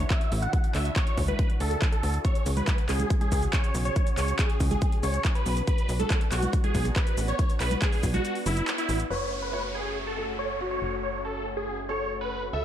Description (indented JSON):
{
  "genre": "uplifting trance",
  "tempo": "140 BPM",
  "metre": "4/4",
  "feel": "straight",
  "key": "F# minor",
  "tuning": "A4 = 438 Hz",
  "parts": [
    { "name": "lush unison pad", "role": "sustained chords", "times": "0.0-12.6 s", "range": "C#3 to G#4", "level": "-38 LUFS", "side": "equal", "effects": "chorus, sidechain pumping" },
    { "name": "tight sequencer bass", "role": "bass", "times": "0.0-12.6 s", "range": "F#1 to D2", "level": "-29 LUFS", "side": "equal", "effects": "sidechain pumping" },
    { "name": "big-room dance drum kit", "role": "drums", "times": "0.0-12.6 s", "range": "congas, handclaps, hi-hat, shaker", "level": "-33 LUFS", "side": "equal", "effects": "overdrive, low-pass filter on hats, small room ambience, low-pass filter on perc, low-pass filter on snare" },
    { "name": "big supersaw lead", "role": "melody", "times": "0.1-12.6 s", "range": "E4 to F#5", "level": "-31 LUFS", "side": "right 1 dB", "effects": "phaser, sidechain pumping, low-pass filter, tape echo" },
    { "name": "electronic kick drum", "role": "drums", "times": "0.1-8.1 s", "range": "none", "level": "-25 LUFS", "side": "equal", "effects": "overdrive, small room ambience" },
    { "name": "felt-muted upright piano", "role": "second line", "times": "9.1-12.6 s", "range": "F#4 to C#5", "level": "-35 LUFS", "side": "left 3 dB", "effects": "dub echo" },
    { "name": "downlifter", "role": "sound effects", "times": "9.1-12.5 s", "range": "none", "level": "-39 LUFS", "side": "equal", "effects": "none" }
  ],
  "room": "light reverb, digital ambience",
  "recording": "dark, warm production",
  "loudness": "-24 LUFS",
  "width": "side -10 dB against mid",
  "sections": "0.0-9.1 A section; 9.1-12.6 B section",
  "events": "kick drops out 8.2-9.1; band accent 8.7; filter sweep on supersaw synth 9.1-12.6",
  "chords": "0.0 Dadd9; 2.2 C#sus4; 5.7 Bm; 9.1 F#m"
}